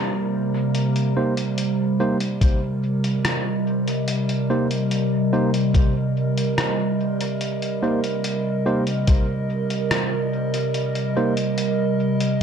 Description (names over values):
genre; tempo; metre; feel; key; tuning
ambient dub; 72 BPM; 4/4; straight; C minor; A4 = 440 Hz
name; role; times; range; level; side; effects
warbly tape-like pad; sustained chords; 0.0-12.4 s; C3 to Eb5; -21 LUFS; right 1 dB; chorus, built-in reverb
bubbling stepped-filter texture; texture; 0.0-0.8 s; Bb3 to Bb4; -33 LUFS; equal; chorus, built-in reverb
lo-fi sampler-style drum kit; drums; 0.7-12.4 s; hi-hat, rim click; -29 LUFS; left 2 dB; dub echo
bright tine electric piano; stabs; 1.2-11.3 s; Bb3 to C5; -26 LUFS; right 2 dB; dub echo
electronic kick drum; drums; 2.4-9.2 s; none; -17 LUFS; left 1 dB; none
room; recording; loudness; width
light reverb, digital ambience; echo-heavy mix; -20 LUFS; side -7 dB against mid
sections
0.7-12.4 A section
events
none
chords
0.0 C7(no3); 0.7 Cm7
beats
| 0.75 1.58 2.41 3.25 | 4.08 4.91 5.75 6.58 | 7.41 8.25 9.08 9.91 | 10.75 11.58 12.41